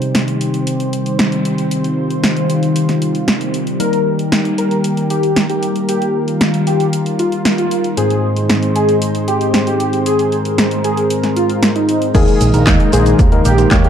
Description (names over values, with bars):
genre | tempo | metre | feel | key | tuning
italo disco | 115 BPM | 4/4 | straight | unclear | A4 = 441 Hz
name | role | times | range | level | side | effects
lush unison pad | sustained chords | 0.0-13.9 s | Eb3 to C5 | -18 LUFS | equal | chorus
bright tine electric piano | stabs | 0.0-13.9 s | Ab2 to Db5 | -21 LUFS | moving between left 6 dB and right 2 dB | auto-pan, low-pass filter
house drum kit | drums | 0.0-13.9 s | cabasa, crash cymbal, handclaps, hi-hat, snare drum | -19 LUFS | equal | small room reverb
wide unison lead | melody | 3.8-13.9 s | Eb4 to Bb4 | -18 LUFS | equal | lush chorus, cassette tape, ping-pong delay
picked electric bass with an envelope filter | bass | 12.1-13.9 s | Bb1 to Eb2 | -14 LUFS | equal | none
electronic kick drum | drums | 12.1-13.8 s | none | -13 LUFS | right 1 dB | overdrive, small room reverb
room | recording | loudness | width
moderate plate reverb, RT60 3.3 s | dark, warm production | -12 LUFS | side -8 dB against mid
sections
0.0-12.1 A section; 12.1-13.9 B section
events
filter sweep on analog synth pad 0.0-12.1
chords
0.0 Cm; 3.8 Eb; 8.0 Ab; 12.1 Ebsus4